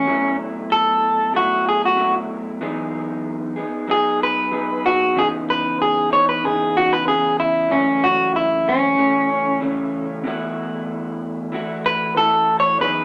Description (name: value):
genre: indie pop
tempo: 94 BPM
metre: 4/4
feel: straight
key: unclear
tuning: A4 = 440 Hz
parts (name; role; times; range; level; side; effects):
- electric guitar through a small old amp; melody; 0.0-13.0 s; C#4 to C#5; -19 LUFS; equal; none
- electric guitar through a small old amp; accompaniment; 0.0-13.0 s; F#2 to G#4; -27 LUFS; equal; vibrato effect
room: wet studio reverb, RT60 0.6 s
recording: none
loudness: -19 LUFS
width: mono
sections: 0.0-13.0 A section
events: clean electric guitar solo 0.0-13.0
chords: 0.1 B7sus4; 2.6 Emaj9; 5.2 C#m9; 7.7 F#m7; 10.3 B7sus4